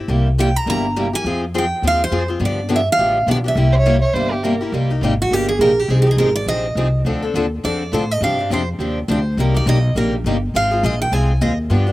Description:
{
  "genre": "acoustic string swing (jazz manouche)",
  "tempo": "206 BPM",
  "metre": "4/4",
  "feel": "swing 57% on 8ths",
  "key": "C minor from 4.7 s",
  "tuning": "A4 = 437 Hz",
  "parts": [
    { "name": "picked steel-string acoustic guitar", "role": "accompaniment", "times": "0.0-11.9 s", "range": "C3 to A4", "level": "-23 LUFS", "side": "left 4 dB", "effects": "slapback echo" },
    { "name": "picked steel-string acoustic guitar", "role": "accompaniment", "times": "0.1-11.9 s", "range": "C3 to A4", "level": "-27 LUFS", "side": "right 5 dB", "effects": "none" },
    { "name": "upright bass", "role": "bass", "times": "0.1-11.9 s", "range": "G1 to A2", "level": "-19 LUFS", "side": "equal", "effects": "none" },
    { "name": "picked steel-string acoustic guitar", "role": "melody", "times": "0.4-11.6 s", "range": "F#4 to Bb5", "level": "-19 LUFS", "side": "right 2 dB", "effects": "none" },
    { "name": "warm violin", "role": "second line", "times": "3.7-4.7 s", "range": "G4 to Db5", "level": "-21 LUFS", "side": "right 2 dB", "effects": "none" }
  ],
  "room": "little or no reverb",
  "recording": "recorded outdoors, with no room sound",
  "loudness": "-15 LUFS",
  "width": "side -16 dB against mid",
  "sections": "0.0-4.7 A section; 4.7-11.9 B section",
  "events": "steel-string acoustic guitar solo 4.7-11.9",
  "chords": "0.1 C7; 1.2 Fm; 2.4 G7; 3.6 C7; 4.7 Cm7; 5.9 Fm7; 7.0 Dm7; 8.2 G7sus4; 9.4 Cm7; 10.5 Ab6",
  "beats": "| 0.08 0.37 0.66 0.95 | 1.24 1.53 1.82 2.11 | 2.40 2.69 2.98 3.27 | 3.56 3.85 4.14 4.43 | 4.72 5.01 5.30 5.59 | 5.88 6.17 6.46 6.75 | 7.05 7.34 7.63 7.92 | 8.21 8.50 8.79 9.08 | 9.37 9.66 9.96 10.25 | 10.54 10.83 11.12 11.41 | 11.70"
}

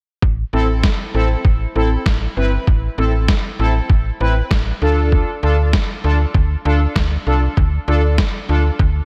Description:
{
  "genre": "synth-pop",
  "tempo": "98 BPM",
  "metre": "4/4",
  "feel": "straight",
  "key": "A minor",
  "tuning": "A4 = 439 Hz",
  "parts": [
    { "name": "slap-like FM bass", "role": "bass", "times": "0.2-9.0 s", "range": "G1 to D2", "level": "-19 LUFS", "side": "equal", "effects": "none" },
    { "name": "lo-fi sampler-style drum kit", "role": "drums", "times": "0.2-8.9 s", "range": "kick drum, snare drum", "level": "-20 LUFS", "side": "equal", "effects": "none" },
    { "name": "analog synth brass", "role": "accompaniment", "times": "0.5-8.6 s", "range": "C4 to B4", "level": "-24 LUFS", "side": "equal", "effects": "chorus" }
  ],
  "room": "light reverb, digital ambience",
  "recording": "dense, heavily limited modern master",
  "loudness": "-17 LUFS",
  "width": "mono",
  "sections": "0.2-9.1 A section",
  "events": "none",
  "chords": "0.2 Am; 4.8 Dm",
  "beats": "| 0.22 0.84 1.45 2.06 | 2.67 3.29 3.90 4.51 | 5.12 5.73 6.35 6.96 | 7.57 8.18 8.80"
}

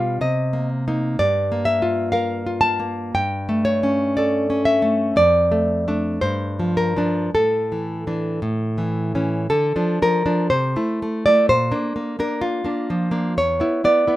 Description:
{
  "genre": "romantic piece for solo classical guitar",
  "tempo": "54-64 BPM",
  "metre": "2/4",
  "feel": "rubato",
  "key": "unclear",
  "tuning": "A4 = 442 Hz",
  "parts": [
    { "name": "nylon-string guitar", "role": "solo", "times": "0.0-14.2 s", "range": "E2 to A5", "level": "-18 LUFS", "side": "equal", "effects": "none" }
  ],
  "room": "light reverb",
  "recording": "minimal, uncompressed stereo recording",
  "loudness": "-18 LUFS",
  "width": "side -15 dB against mid",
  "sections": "0.0-9.5 A section; 9.5-14.2 B section",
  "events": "none",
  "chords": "0.2 Cm7; 1.2 Gm7; 3.2 A7/G; 5.2 Dm/F; 6.2 Gm7; 7.3 Asus4; 8.4 A; 9.5 Dm; 10.5 Am/C; 11.5 Bb; 13.4 E5",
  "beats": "0.22 | 1.20 2.16 | 3.16 4.17 | 5.18 6.23 | 7.32 8.43 | 9.50 10.49 | 11.48 12.42 | 13.37"
}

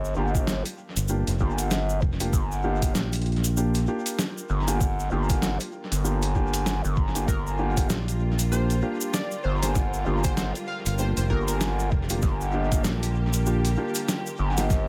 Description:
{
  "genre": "glitch hop",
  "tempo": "97 BPM",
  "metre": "4/4",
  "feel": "swing 59% on 16ths",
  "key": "G minor pentatonic",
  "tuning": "A4 = 440 Hz",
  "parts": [
    { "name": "gritty driven synth bass", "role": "bass", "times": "0.0-14.9 s", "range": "G1", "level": "-28 LUFS", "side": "equal", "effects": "overdrive" },
    { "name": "tube shaker", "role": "percussion", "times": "0.0-14.8 s", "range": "none", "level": "-38 LUFS", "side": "equal", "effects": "dub echo" },
    { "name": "airy breathy pad", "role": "texture", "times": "0.0-14.9 s", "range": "F4 to G5", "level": "-44 LUFS", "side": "equal", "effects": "none" },
    { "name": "warm grand piano", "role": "stabs", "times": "0.2-14.7 s", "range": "Bb3 to G4", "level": "-34 LUFS", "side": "equal", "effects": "sidechain pumping, dub echo" },
    { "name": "electronic kick drum", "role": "drums", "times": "0.3-14.8 s", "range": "none", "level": "-28 LUFS", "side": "equal", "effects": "studio reverb" },
    { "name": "boom bap sampler-style drum kit", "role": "drums", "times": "0.5-14.8 s", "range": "hi-hat, snare drum", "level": "-34 LUFS", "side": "equal", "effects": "studio reverb, dub echo" },
    { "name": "modern bright fingered electric bass", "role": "bass", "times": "1.0-3.9, 7.9-13.8 s", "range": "F1 to Bb1", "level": "-27 LUFS", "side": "equal", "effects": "none" },
    { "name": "plucky unison lead", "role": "melody", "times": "7.3-11.6 s", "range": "Bb4 to F5", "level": "-38 LUFS", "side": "equal", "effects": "subtle chorus, dub echo" },
    { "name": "clear symphonic string section", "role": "sustained chords", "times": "7.3-14.9 s", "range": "D3 to G4", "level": "-39 LUFS", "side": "equal", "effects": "sidechain pumping" }
  ],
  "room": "little or no reverb",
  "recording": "echo-heavy mix",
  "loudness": "-25 LUFS",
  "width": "mono",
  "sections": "0.0-14.9 A section",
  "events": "none",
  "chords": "0.0 Gm7",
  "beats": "0.48 1.09 1.71 | 2.33 2.95 3.57 4.19 | 4.81 5.42 6.04 6.66 | 7.28 7.90 8.52 9.14 | 9.76 10.37 10.99 11.61 | 12.23 12.85 13.47 14.09 | 14.70"
}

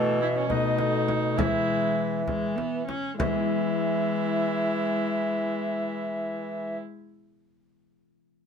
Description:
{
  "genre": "classical, renaissance-style consort dance",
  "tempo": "64-71 BPM (dotted quarters)",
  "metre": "6/8",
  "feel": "straight",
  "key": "E major",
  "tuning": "A4 = 440 Hz",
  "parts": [
    { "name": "mellow alto recorder", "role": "melody", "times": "0.0-6.8 s", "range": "A4 to E5", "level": "-33 LUFS", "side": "left 5 dB", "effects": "none" },
    { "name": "warm viola", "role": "second line", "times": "0.0-6.8 s", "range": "A3 to E4", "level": "-32 LUFS", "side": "right 4 dB", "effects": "none" },
    { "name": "concert harp", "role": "accompaniment", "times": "0.0-7.1 s", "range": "B2 to B4", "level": "-32 LUFS", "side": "left 6 dB", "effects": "none" },
    { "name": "warm viola", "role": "accompaniment", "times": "0.0-6.8 s", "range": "E3 to C#4", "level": "-31 LUFS", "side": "left 3 dB", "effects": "none" },
    { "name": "warm bassoon", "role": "bass", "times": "0.0-6.8 s", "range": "B2 to E3", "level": "-29 LUFS", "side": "right 2 dB", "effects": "none" },
    { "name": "frame drum", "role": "percussion", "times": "0.5-3.5 s", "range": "none", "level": "-31 LUFS", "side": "left 1 dB", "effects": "none" }
  ],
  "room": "light reverb",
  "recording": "minimal, uncompressed stereo recording",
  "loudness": "-24 LUFS",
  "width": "side -7 dB against mid",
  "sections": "0.0-3.2 A section; 3.2-6.9 B section",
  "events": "slowing down 0.0-3.2",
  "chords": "0.5 B7; 1.4 E",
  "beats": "0.49 | 1.36 2.26 | 3.19 4.12 | 5.05 5.98"
}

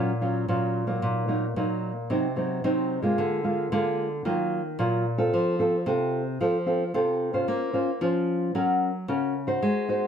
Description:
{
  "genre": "samba",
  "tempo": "112 BPM",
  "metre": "4/4",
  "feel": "straight",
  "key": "Bb minor",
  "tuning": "A4 = 440 Hz",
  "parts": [
    { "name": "nylon-string guitar", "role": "solo", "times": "0.0-10.1 s", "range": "Bb2 to C5", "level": "-24 LUFS", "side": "equal", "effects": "none" }
  ],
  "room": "light reverb",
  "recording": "close, detailed microphones",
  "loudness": "-24 LUFS",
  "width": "side -8 dB against mid",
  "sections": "0.0-10.1 A section",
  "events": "none",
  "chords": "0.0 Gbmaj7/Bb; 1.0 Ebm/Bb; 2.1 Cdim; 3.2 Bb7/D; 4.3 Ebmadd9; 5.3 F; 7.5 Bbmadd9; 8.5 Gb",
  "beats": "0.49 | 1.03 1.57 2.10 2.64 | 3.18 3.72 4.25 4.79 | 5.33 5.86 6.40 6.94 | 7.47 8.01 8.54 9.08 | 9.62"
}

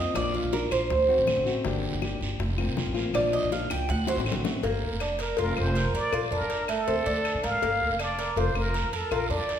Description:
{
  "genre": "latin, Cuban son and guajira",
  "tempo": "161 BPM",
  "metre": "4/4",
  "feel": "straight",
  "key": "G minor",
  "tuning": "A4 = 440 Hz",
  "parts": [
    { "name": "flamenco guitar", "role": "accompaniment", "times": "0.0-4.6 s", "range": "D3 to G4", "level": "-32 LUFS", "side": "left 4 dB", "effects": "none" },
    { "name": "Cuban tres", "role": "arpeggios", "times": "0.0-9.6 s", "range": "A3 to G5", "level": "-28 LUFS", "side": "right 2 dB", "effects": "none" },
    { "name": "upright bass", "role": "bass", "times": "0.0-9.6 s", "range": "F1 to D3", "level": "-31 LUFS", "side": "equal", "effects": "none" },
    { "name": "bongos and cowbell", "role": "percussion", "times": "0.2-9.6 s", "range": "none", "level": "-34 LUFS", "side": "left 7 dB", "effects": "none" },
    { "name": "claves", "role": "percussion", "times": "0.2-9.3 s", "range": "none", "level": "-41 LUFS", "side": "left 6 dB", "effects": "none" },
    { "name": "guiro", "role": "percussion", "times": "0.2-9.6 s", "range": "none", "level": "-39 LUFS", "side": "right 4 dB", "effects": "none" },
    { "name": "trumpet with plunger mute", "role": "melody", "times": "5.2-9.6 s", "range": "A4 to F5", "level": "-29 LUFS", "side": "equal", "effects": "none" }
  ],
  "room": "wet recital hall reverb, RT60 1.3 s",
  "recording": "recorded in a church or concert hall",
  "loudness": "-24 LUFS",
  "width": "side -9 dB against mid",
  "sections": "0.0-4.6 A section; 4.6-9.6 B section",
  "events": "Cuban tres solo 0.0-4.6; drum fill 4.1-4.6",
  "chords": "0.2 Bb; 0.9 D7; 1.6 Gm7; 2.4 Fsus4; 3.1 Bb; 3.9 D7; 4.6 Gm7; 5.4 Fsus4; 6.1 Bb; 6.9 D5; 7.6 Gm7; 8.4 Fsus4",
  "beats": "| 0.15 0.53 0.90 1.27 | 1.65 2.02 2.40 2.77 | 3.14 3.52 3.89 4.26 | 4.64 5.01 5.38 5.76 | 6.13 6.50 6.88 7.25 | 7.62 8.00 8.37 8.74 | 9.12 9.49"
}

